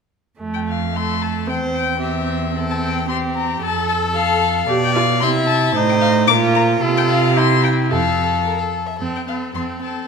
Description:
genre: quick classical-period movement for string quartet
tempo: 112 BPM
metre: 2/4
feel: straight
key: F major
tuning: A4 = 435 Hz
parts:
  - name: rich viola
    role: accompaniment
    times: 0.4-10.1 s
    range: A3 to A4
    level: -21 LUFS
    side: right 1 dB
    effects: none
  - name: rich cello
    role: bass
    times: 0.4-10.0 s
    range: E2 to C3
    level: -21 LUFS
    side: right 4 dB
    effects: none
  - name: dark violin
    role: melody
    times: 0.5-10.1 s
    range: E5 to D6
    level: -21 LUFS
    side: left 8 dB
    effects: none
  - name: warm violin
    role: second line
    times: 0.9-10.1 s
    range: G4 to E5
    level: -24 LUFS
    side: left 3 dB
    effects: none
room: wet scoring stage reverb, RT60 1.9 s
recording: none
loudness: -16 LUFS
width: side -5 dB against mid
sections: 0.4-9.0 A section; 9.0-10.1 A section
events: none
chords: 0.4 F; 1.5 C/E; 3.6 F; 4.7 G7/B; 5.2 C; 5.7 F7/A (rootless); 6.3 Bb5; 6.8 F/C; 7.4 C; 7.9 F

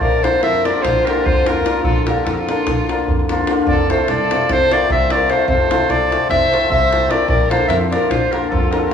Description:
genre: balkan folk, Balkan wedding band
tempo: 298 BPM (eighths)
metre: 9/8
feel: straight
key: unclear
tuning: A4 = 442 Hz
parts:
  - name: clear clarinet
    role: melody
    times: 0.0-8.9 s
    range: A4 to E5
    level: -18 LUFS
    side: left 1 dB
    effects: none
  - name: dark violin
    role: second line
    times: 0.0-8.9 s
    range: F4 to C5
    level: -23 LUFS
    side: right 2 dB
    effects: none
  - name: hammered dulcimer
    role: accompaniment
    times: 0.0-8.9 s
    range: C3 to F4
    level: -20 LUFS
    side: left 3 dB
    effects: none
  - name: upright bass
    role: bass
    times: 0.0-8.9 s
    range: F1 to F2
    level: -24 LUFS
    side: equal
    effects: none
  - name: davul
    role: percussion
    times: 0.0-8.9 s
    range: none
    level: -21 LUFS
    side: equal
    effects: none
room: wet recital hall reverb, RT60 1.7 s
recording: recorded in a church or concert hall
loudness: -14 LUFS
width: side -7 dB against mid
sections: 0.0-8.9 A section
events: none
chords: 0.0 Bb; 3.7 F; 7.3 Bb

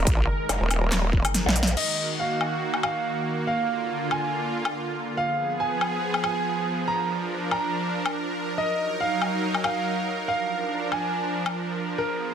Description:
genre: heavy wobble dubstep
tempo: 141 BPM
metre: 4/4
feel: swing 55% on 16ths, half-time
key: Eb harmonic minor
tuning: A4 = 441 Hz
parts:
  - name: supersaw pad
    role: sustained chords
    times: 0.0-12.3 s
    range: D3 to Bb4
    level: -28 LUFS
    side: right 1 dB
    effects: sidechain pumping, low-pass filter
  - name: vowel-sweep wobble bass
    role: bass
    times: 0.0-1.2 s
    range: Eb1 to Bb1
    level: -23 LUFS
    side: equal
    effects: chorus, overdrive
  - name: big-room dance drum kit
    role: drums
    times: 0.1-11.5 s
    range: crash cymbal, handclaps, hi-hat, snare drum, woodblock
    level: -27 LUFS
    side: left 2 dB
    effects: overdrive, small room ambience
  - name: electronic kick drum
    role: drums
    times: 0.1-1.2 s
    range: none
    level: -23 LUFS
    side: equal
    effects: overdrive, small room ambience
  - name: growl bass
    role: bass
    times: 0.5-1.8 s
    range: F1 to Bb1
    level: -24 LUFS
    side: equal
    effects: chorus, overdrive
  - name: clear concert grand piano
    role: melody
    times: 1.8-12.3 s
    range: Bb4 to Bb5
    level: -28 LUFS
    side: right 2 dB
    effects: digital delay
room: light reverb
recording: dense, heavily limited modern master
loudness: -23 LUFS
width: side -8 dB against mid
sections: 0.0-1.8 A section; 1.8-12.3 B section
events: drop 0.0-1.8; drum fill 1.3-1.8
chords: 0.0 Eb5; 1.8 Ebm; 3.5 Bb; 5.2 Fdim; 6.9 Bb; 8.6 Ebm; 10.3 Bb

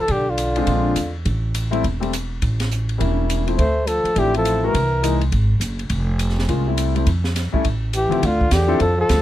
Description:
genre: jazz, small-group swing and bop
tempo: 207 BPM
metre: 4/4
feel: swing 62% on 8ths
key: unclear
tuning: A4 = 440 Hz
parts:
  - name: warm flugelhorn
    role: melody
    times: 0.0-1.2, 3.6-5.2, 8.0-9.2 s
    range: F4 to C5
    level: -21 LUFS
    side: left 1 dB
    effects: none
  - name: growling trombone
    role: second line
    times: 0.0-1.1, 3.6-5.2, 7.9-9.2 s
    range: D3 to A3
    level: -26 LUFS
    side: right 2 dB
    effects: none
  - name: upright bass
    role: bass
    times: 0.1-9.2 s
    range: E1 to F2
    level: -20 LUFS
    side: right 1 dB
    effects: none
  - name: open jazz drum kit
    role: drums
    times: 0.1-9.2 s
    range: hi-hat, kick drum, ride cymbal, snare drum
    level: -27 LUFS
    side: equal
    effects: none
  - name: clear concert grand piano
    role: accompaniment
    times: 0.6-8.8 s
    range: D2 to A4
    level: -23 LUFS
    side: left 4 dB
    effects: none
room: little or no reverb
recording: dark, warm production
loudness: -17 LUFS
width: side -13 dB against mid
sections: 0.0-8.2 A section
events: none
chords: 0.1 Bdim; 0.7 Bb9; 1.3 Am7; 2.4 A7b9; 3.6 Dm7; 4.7 C7alt; 5.9 Fmaj7; 7.6 A5; 8.2 Dm

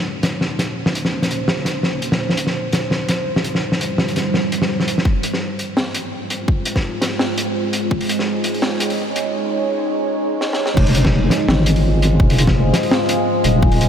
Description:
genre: half-time drum and bass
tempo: 168 BPM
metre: 4/4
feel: swing 55% on 16ths, half-time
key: F minor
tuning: A4 = 439 Hz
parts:
  - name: deep dark ambient pad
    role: sustained chords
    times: 0.1-13.9 s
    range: G3 to Db5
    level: -21 LUFS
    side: right 1 dB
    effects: chorus, built-in reverb, sidechain pumping
  - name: crunchy breakbeat drum kit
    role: drums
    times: 0.2-13.9 s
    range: crash cymbal, hi-hat, snare drum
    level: -20 LUFS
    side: equal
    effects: high-pass filter on snare, high-pass filter on hats, high-pass filter on cymbals, high-pass filter on room
  - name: electronic kick drum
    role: drums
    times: 5.1-8.0, 10.8-13.7 s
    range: none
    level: -17 LUFS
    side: equal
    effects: none
  - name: deep soft wobble bass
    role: bass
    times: 10.8-13.9 s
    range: Eb1 to Ab1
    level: -15 LUFS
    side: equal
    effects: chorus
room: moderate huge ambient reverb, RT60 7.0 s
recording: dreamy mix soaked in reverb, high-pass filter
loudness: -16 LUFS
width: side -8 dB against mid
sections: 0.0-5.1 A section; 5.1-10.8 B section; 10.8-13.9 C section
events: filter sweep on ambient pad 0.0-5.1; build-up 5.1-10.8; filter sweep 5.1-10.8; drum fill 10.4-10.8; drop 10.8-13.9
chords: 0.0 Bbmadd9; 2.2 C; 5.1 Fm; 7.9 Eb7sus4; 10.8 Fm

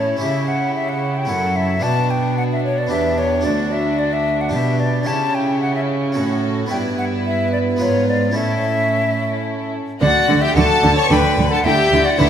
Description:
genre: classical, baroque-style concerto movement with solo episodes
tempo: 110 BPM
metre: 3/4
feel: straight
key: D major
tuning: A4 = 440 Hz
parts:
  - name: hollow silver concert flute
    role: melody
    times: 0.0-12.3 s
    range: B4 to A5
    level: -21 LUFS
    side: left 2 dB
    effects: none
  - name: rich chamber violin section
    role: melody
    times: 0.0-12.3 s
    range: F#4 to C#6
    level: -26 LUFS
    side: left 4 dB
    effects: none
  - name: rich studio violin section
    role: second line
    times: 0.0-12.3 s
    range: D4 to C#5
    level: -25 LUFS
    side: left 1 dB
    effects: none
  - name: dark chamber viola section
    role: accompaniment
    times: 0.0-12.3 s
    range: B3 to E4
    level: -24 LUFS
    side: right 2 dB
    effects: none
  - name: harpsichord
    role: accompaniment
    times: 0.0-12.3 s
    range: D2 to B4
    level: -26 LUFS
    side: equal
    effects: none
  - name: rich chamber cello section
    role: bass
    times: 0.0-12.3 s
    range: D2 to D3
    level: -22 LUFS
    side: right 2 dB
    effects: none
  - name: clear chamber double bass section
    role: bass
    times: 10.0-12.3 s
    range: D2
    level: -21 LUFS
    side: right 3 dB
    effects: none
room: wet scoring stage reverb, RT60 2.0 s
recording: none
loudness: -15 LUFS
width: side -9 dB against mid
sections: 0.0-10.0 A section; 10.0-12.3 B section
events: none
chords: 0.2 C#dim; 1.3 F#m7; 1.8 Bm; 2.9 Em7; 3.5 D; 4.5 G/B; 5.1 C#dim; 6.2 F#m/A; 6.7 Em/G; 7.8 G#dim7; 8.4 A; 10.0 D; 11.6 Em7/D

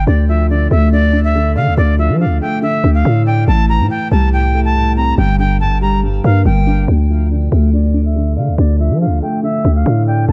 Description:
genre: hip hop, drill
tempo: 141 BPM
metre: 4/4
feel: half-time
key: D minor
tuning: A4 = 439 Hz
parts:
  - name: bright reedy jazz flute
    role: melody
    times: 0.0-10.3 s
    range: D5 to Bb5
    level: -22 LUFS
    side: equal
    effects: low-pass filter, digital delay
  - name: growling 808-style bass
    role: bass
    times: 0.0-10.3 s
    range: G1 to F3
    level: -15 LUFS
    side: equal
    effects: none
  - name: dark concert grand piano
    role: accompaniment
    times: 0.1-10.3 s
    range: G2 to D5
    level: -21 LUFS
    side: equal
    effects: low-pass filter
room: small room ambience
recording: dark, warm production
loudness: -14 LUFS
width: mono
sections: 0.0-6.9 A section; 6.9-10.3 B section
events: filter sweep 6.9-10.3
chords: 0.1 Dm; 3.5 Am7; 5.2 Gm; 6.9 Dm

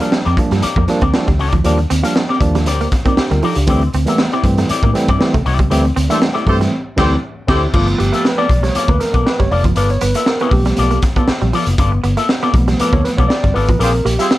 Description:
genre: funk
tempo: 118 BPM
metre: 4/4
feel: straight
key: G mixolydian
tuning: A4 = 437 Hz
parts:
  - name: electric guitar with an envelope filter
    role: accompaniment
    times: 0.0-14.3 s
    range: B3 to F5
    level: -21 LUFS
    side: left 5 dB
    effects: none
  - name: semi-hollow electric guitar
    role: riff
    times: 0.0-14.3 s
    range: F3 to C4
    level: -22 LUFS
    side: right 6 dB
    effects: wide subtle chorus
  - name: tine electric piano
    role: stabs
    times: 0.0-14.4 s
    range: E3 to D5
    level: -19 LUFS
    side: right 2 dB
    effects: none
  - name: raw garage drum kit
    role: drums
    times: 0.0-14.4 s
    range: crash cymbal, hi-hat, kick drum, snare drum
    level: -17 LUFS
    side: equal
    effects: none
  - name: vintage muted fingered electric bass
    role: bass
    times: 0.3-14.2 s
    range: F1 to A2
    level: -17 LUFS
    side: equal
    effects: none
  - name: mellow horn section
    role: second line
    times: 6.1-7.6, 13.8-14.3 s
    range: C4 to C5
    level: -20 LUFS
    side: equal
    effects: none
room: light reverb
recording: dark, warm production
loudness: -12 LUFS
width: side -16 dB against mid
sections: 0.0-7.7 A section; 7.7-14.4 B section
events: tine electric piano fill 2.2-3.7; band accent 5.7-7.7, 13.8-14.4; tine electric piano solo 7.7-14.4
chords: 0.0 Ebmaj7; 3.7 D9sus4; 7.7 G9; 13.8 Bb9

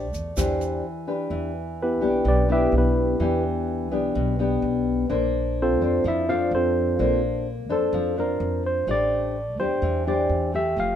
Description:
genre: bossa nova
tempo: 127 BPM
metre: 4/4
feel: straight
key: A minor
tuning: A4 = 440 Hz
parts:
  - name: barky tine electric piano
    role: melody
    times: 0.0-11.0 s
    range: B3 to F5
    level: -24 LUFS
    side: equal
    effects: none
  - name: nylon-string guitar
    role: accompaniment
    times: 0.0-11.0 s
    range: B2 to C5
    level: -25 LUFS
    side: left 2 dB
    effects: none
  - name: upright bass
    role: bass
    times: 0.0-11.0 s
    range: F1 to F2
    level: -27 LUFS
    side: equal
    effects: none
  - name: jazz brush drum kit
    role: drums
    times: 0.1-0.7 s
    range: hi-hat, kick drum, rim click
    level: -31 LUFS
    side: equal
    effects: none
  - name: egg shaker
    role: percussion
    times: 0.1-0.8 s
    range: none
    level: -39 LUFS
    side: right 7 dB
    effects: none
room: little or no reverb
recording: minimal, uncompressed stereo recording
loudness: -21 LUFS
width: side -9 dB against mid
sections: 0.0-1.3 A section; 1.3-11.0 B section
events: break 0.8-1.3; tine electric piano solo 1.3-11.0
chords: 0.0 Am11; 1.3 Em7; 5.1 Bbmaj9; 8.9 Am7

